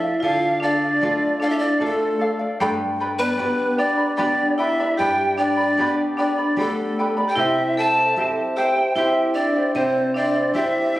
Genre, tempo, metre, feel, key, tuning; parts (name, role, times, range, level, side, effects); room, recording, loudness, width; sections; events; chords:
andean folk; 76 BPM; 3/4; straight; A4 = 439 Hz
bright polished pan flute; melody; 0.0-11.0 s; A4 to A5; -22 LUFS; equal; tape echo
vibraphone with hard mallets; second line; 0.0-11.0 s; A3 to A4; -24 LUFS; left 1 dB
charango; accompaniment; 0.0-11.0 s; E4 to B5; -24 LUFS; equal
nylon-string guitar; accompaniment; 0.0-11.0 s; G2 to G4; -30 LUFS; equal
light reverb; recorded on a phone in the room, studio reverb; -18 LUFS; side -16 dB against mid
0.0-11.0 A section
0.0 Dm; 2.6 G; 7.4 C